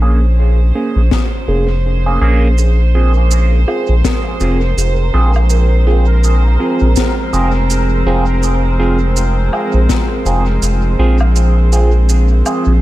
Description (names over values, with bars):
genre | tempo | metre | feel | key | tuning
ambient dub | 82 BPM | 4/4 | swing 59% on 16ths | unclear | A4 = 440 Hz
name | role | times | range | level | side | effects
dark studio string section | sustained chords | 0.0-12.8 s | F3 to C5 | -21 LUFS | right 1 dB | none
overdriven tine electric piano | stabs | 0.0-12.7 s | Bb3 to Ab4 | -19 LUFS | right 2 dB | phaser, low-pass filter, dub echo
round analog bass | bass | 0.0-12.8 s | F1 to Bb1 | -11 LUFS | equal | none
electronic kick drum | drums | 1.1-10.1 s | none | -19 LUFS | equal | none
snare drum, shaker and woodblock | drums | 1.1-12.6 s | none | -22 LUFS | left 4 dB | dub echo
bubbling stepped-filter texture | texture | 2.6-12.8 s | Bb4 | -25 LUFS | right 2 dB | chorus, built-in reverb
room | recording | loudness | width
small room ambience | echo-heavy mix | -11 LUFS | side -16 dB against mid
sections
0.0-12.8 A section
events
fade-in on string section 0.0-12.8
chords
0.0 Bbm7; 2.6 Fm